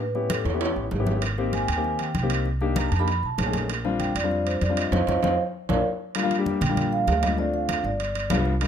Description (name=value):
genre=Afro-Cuban jazz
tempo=195 BPM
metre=4/4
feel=straight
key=Bb major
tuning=A4 = 440 Hz
part: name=vibraphone with soft mallets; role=melody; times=0.0-8.3 s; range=A4 to Cb6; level=-27 LUFS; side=right 3 dB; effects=plate reverb
part: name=upright bass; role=bass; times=0.0-8.7 s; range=G1 to A2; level=-27 LUFS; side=equal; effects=none
part: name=warm baby grand piano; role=accompaniment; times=0.1-8.7 s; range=G3 to G#4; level=-27 LUFS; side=left 5 dB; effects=none
part: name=congas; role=percussion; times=0.1-8.7 s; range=none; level=-31 LUFS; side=left 1 dB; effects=none
part: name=timbales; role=percussion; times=0.3-8.7 s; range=none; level=-30 LUFS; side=right 6 dB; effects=none
room=light reverb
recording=close, detailed microphones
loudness=-22 LUFS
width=side -8 dB against mid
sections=0.0-6.2 A section; 6.2-8.7 B section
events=drum fill 0.5-1.2, 5.4-6.2; band accent 4.9-6.2; grand piano fill 5.7-6.2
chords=0.0 A9; 1.2 Abmaj9; 2.5 Cm9; 3.1 F7alt; 3.7 Bb69; 4.9 F5; 5.5 Bb; 6.2 Bb6; 7.4 Dm7; 8.0 G7